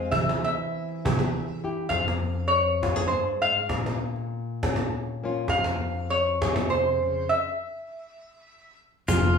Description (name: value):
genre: acoustic folk duo or small band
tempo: 100 BPM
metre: 3/4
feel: swing 57% on 8ths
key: F harmonic minor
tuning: A4 = 440 Hz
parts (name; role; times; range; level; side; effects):
- lap resonator guitar; melody; 0.0-8.8 s; C5 to F5; -25 LUFS; equal; none
- nylon-string guitar; accompaniment; 0.0-9.4 s; F2 to Ab4; -30 LUFS; left 2 dB; none
- cajon; percussion; 0.1-9.2 s; none; -28 LUFS; right 1 dB; none
- pedal steel guitar; second line; 9.1-9.4 s; F4; -24 LUFS; left 1 dB; none
- fingered electric bass; bass; 9.1-9.4 s; F1; -24 LUFS; left 1 dB; none
- egg shaker; percussion; 9.1-9.2 s; none; -37 LUFS; left 5 dB; none
room: wet large studio reverb, RT60 0.8 s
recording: band playing live in one room, studio ambience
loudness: -24 LUFS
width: side -6 dB against mid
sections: 0.0-9.1 A section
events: stop 7.3-9.1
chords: 0.1 C/E; 1.9 Fm; 3.7 Bbm; 5.5 Fm; 7.3 N.C.